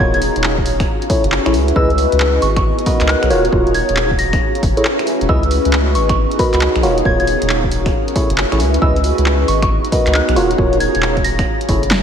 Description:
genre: UK garage, two-step garage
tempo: 136 BPM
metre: 4/4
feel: swing 65% on 16ths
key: unclear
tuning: A4 = 440 Hz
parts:
  - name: soft synth bell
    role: melody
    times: 0.0-11.5 s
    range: B5 to A#6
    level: -23 LUFS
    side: right 1 dB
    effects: chorus, vintage 12-bit sampler grit, ping-pong delay
  - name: ethereal airy pad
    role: sustained chords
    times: 0.0-12.0 s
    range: B3 to A#5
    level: -23 LUFS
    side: right 1 dB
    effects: ensemble chorus, built-in reverb, tremolo, sidechain pumping
  - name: tine electric piano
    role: stabs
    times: 0.0-11.8 s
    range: E4 to D#5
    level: -19 LUFS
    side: equal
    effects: phaser, ping-pong delay
  - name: soft dub sub bass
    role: bass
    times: 0.0-12.0 s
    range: D#1 to C#2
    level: -18 LUFS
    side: equal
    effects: none
  - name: electronic kick drum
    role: drums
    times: 0.0-11.8 s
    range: none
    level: -18 LUFS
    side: equal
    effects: none
  - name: airy breathy pad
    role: texture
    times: 0.0-12.0 s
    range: C#4 to F#5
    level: -21 LUFS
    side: left 2 dB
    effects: chorus, sidechain pumping
  - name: punchy analog drum machine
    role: drums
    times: 0.1-12.0 s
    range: finger snaps, handclaps, hi-hat, snare drum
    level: -22 LUFS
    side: equal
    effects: none
room: moderate lush hall reverb, RT60 1.8 s, digital ambience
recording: dreamy mix soaked in reverb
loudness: -12 LUFS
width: side -8 dB against mid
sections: 0.0-12.0 A section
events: none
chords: 0.0 D#m9; 0.9 F#m9; 1.8 C#m9; 2.4 G#m9; 3.3 D#m9; 4.4 F#m9; 5.3 C#m9; 6.0 G#m9; 6.8 D#m9; 7.9 F#m9; 8.8 C#m9; 9.5 G#m9; 10.4 D#m9; 11.5 F#m9

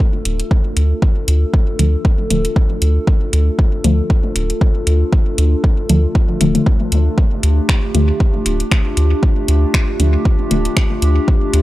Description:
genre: dub techno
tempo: 117 BPM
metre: 4/4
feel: swing 56% on 16ths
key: D minor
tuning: A4 = 444 Hz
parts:
  - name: warbly tape-like pad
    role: sustained chords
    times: 0.0-11.6 s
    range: A3 to A4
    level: -22 LUFS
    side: equal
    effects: chorus, built-in reverb, sidechain pumping
  - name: electronic kick drum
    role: drums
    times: 0.0-11.4 s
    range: none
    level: -14 LUFS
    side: equal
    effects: overdrive
  - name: round analog bass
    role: bass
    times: 0.3-11.6 s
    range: D1 to D2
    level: -14 LUFS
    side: equal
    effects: tube saturation, sidechain pumping
  - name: deep house drum kit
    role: drums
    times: 0.3-11.6 s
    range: finger snaps, hi-hat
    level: -22 LUFS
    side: equal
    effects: overdrive, dub echo
  - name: filtered dub chord stab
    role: stabs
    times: 1.8-10.8 s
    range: D3 to A3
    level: -20 LUFS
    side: left 1 dB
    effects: chorus, phaser, sidechain pumping, dub echo
room: little or no reverb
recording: dry, gritty hardware recording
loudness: -13 LUFS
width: side -16 dB against mid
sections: 0.0-11.6 A section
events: none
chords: 0.0 Dm

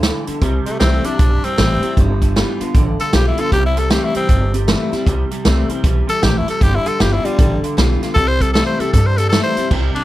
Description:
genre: rockabilly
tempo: 155 BPM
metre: 4/4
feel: swing 63% on 8ths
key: C major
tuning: A4 = 440 Hz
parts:
  - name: picked steel-string acoustic guitar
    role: accompaniment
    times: 0.0-10.0 s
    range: G2 to F4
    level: -23 LUFS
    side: left 4 dB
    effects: none
  - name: electric guitar through a small old amp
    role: riff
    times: 0.0-10.0 s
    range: G2 to A3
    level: -24 LUFS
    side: right 4 dB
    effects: ensemble chorus
  - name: upright bass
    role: bass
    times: 0.0-10.0 s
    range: G1 to G2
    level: -18 LUFS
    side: equal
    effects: none
  - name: vintage drum kit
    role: drums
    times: 0.0-10.0 s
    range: crash cymbal, hi-hat, kick drum, ride cymbal, snare drum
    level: -18 LUFS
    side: right 1 dB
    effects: none
  - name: raspy tenor saxophone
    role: melody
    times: 0.7-10.0 s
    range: G3 to C5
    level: -19 LUFS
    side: left 2 dB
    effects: none
room: little or no reverb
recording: none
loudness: -13 LUFS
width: side -15 dB against mid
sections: 0.0-9.7 A section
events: none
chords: 0.4 C; 2.0 G7; 3.5 C; 6.6 G7; 8.2 C

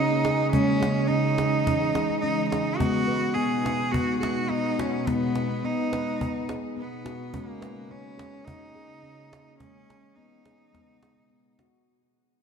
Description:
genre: world meditative, meditative tuned percussion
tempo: 106 BPM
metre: 4/4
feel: swing 54% on 16ths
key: G# minor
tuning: A4 = 440 Hz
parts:
  - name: clear cello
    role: melody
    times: 0.0-11.6 s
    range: A#3 to G#4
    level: -28 LUFS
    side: equal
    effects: shimmer reverb, ping-pong delay
  - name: ethereal airy pad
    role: sustained chords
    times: 0.0-11.9 s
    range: B2 to F#4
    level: -30 LUFS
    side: right 1 dB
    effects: ensemble chorus, built-in reverb
  - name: handpan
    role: arpeggios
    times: 0.0-11.9 s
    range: G#3 to B4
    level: -28 LUFS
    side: equal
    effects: shimmer reverb, ping-pong delay
  - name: cajon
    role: percussion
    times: 0.1-11.8 s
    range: none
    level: -33 LUFS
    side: right 1 dB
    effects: none
room: wet concert hall reverb, RT60 2.2 s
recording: dark, warm production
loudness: -23 LUFS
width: side -6 dB against mid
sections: 0.0-11.9 A section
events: fade-out 0.0-11.9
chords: 0.0 F#; 0.5 C#m; 2.8 G#m; 7.3 F#; 9.6 C#m; 10.7 G#m

